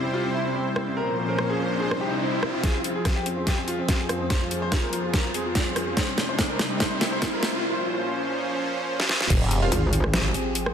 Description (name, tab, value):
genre	heavy wobble dubstep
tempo	144 BPM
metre	4/4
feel	swing 53% on 16ths, half-time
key	F harmonic minor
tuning	A4 = 442 Hz
part	bright grand piano	melody	0.0-7.6 s	Bb3 to C5	-30 LUFS	left 1 dB	low-pass filter, dub echo
part	supersaw pad	sustained chords	0.0-10.7 s	F2 to C5	-28 LUFS	equal	sidechain pumping, low-pass filter
part	riser and sub drop	sound effects	0.4-10.7 s	none	-31 LUFS	equal	none
part	dubstep drum kit	drums	0.8-10.7 s	crash cymbal, hi-hat, rim click, snare drum	-26 LUFS	equal	overdrive
part	electronic kick drum	drums	2.6-9.4 s	none	-25 LUFS	equal	overdrive
part	formant-sweep wobble bass	bass	9.3-9.7 s	F1	-24 LUFS	equal	chorus, overdrive
part	orchestra-hit-like synth stab	stabs	9.6-9.7 s	F4 to F5	-32 LUFS	right 3 dB	built-in reverb, dub echo
part	metallic wobble bass	bass	9.7-10.3 s	Ab1	-24 LUFS	equal	chorus, overdrive
room	moderate lush hall reverb, RT60 2.0 s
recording	dense, heavily limited modern master, high-pass filter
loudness	-22 LUFS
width	side -8 dB against mid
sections	0.0-2.6 A section; 2.6-9.3 B section; 9.3-10.7 C section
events	riser 0.4-2.6, 2.6-7.6; build-up 2.6-9.3; drum fill 2.6-7.6, 9.0-9.3; filter sweep on supersaw synth 2.6-9.3; filter sweep 2.6-9.3; drop 9.3-10.7; impact 9.3-10.7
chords	0.0 C; 1.0 Bbmadd9; 1.8 C; 2.6 Fm; 6.0 C; 7.6 Bbmadd9; 9.3 Fmadd9